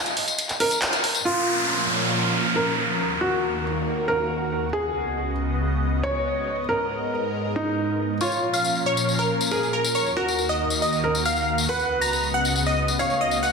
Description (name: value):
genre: uplifting trance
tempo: 138 BPM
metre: 4/4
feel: straight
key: Eb minor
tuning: A4 = 440 Hz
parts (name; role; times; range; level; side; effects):
- felt-muted upright piano; second line; 0.0-13.5 s; Eb4 to F5; -26 LUFS; equal; dub echo
- punchy analog drum machine; drums; 0.1-1.2 s; handclaps, hi-hat; -25 LUFS; right 1 dB; low-pass filter on hats, low-pass filter on snare, low-pass filter on room
- tambourine; percussion; 0.1-1.2, 8.2-13.5 s; none; -28 LUFS; left 6 dB; none
- lush unison pad; sustained chords; 1.6-13.5 s; Db2 to F5; -26 LUFS; equal; chorus, phaser, vintage 12-bit sampler grit
- downlifter and riser; sound effects; 1.3-4.7, 12.8-13.5 s; none; -26 LUFS; right 1 dB; none
- supersaw stab; melody; 8.2-13.5 s; Ab4 to Bb5; -24 LUFS; equal; ping-pong delay
room: wet recital hall reverb, RT60 1.5 s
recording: dense, heavily limited modern master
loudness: -21 LUFS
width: side -4 dB against mid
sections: 0.0-1.3 A section; 1.3-13.5 B section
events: band accent 0.8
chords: 0.0 N.C.; 1.3 Bbm; 3.0 Ebm; 4.7 Db7sus4; 6.5 Abmadd9; 8.2 Bbm; 9.9 Ebm; 11.7 Db7sus4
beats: 0.39 0.82 | 1.25 1.69 2.12 2.56 | 2.99 3.43 3.86 4.30 | 4.73 5.17 5.60 6.04 | 6.47 6.91 7.34 7.78 | 8.21 8.65 9.08 9.52 | 9.95 10.38 10.82 11.25 | 11.69 12.12 12.56 12.99 | 13.43